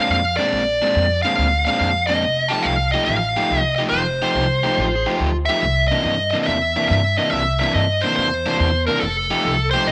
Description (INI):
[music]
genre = electric blues shuffle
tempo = 141 BPM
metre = 4/4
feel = swing 67% on 8ths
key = unclear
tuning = A4 = 440 Hz
[part]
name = dark smooth lead guitar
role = melody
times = 0.0-9.9 s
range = A4 to A5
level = -21 LUFS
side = equal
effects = overdrive
[part]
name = overdriven semi-hollow guitar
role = riff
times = 0.0-9.9 s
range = Bb2 to G4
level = -25 LUFS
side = equal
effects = none
[part]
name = upright bass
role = bass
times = 0.1-9.9 s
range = F1 to G2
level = -26 LUFS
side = equal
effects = none
[part]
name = overdriven slide guitar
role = second line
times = 4.7-5.4 s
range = Eb4 to Ab4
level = -31 LUFS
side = equal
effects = none
[sound]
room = light reverb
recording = none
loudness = -19 LUFS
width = mono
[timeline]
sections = 0.0-9.9 A section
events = none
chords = 0.0 Bb9; 2.2 F9; 5.6 C9; 9.0 F9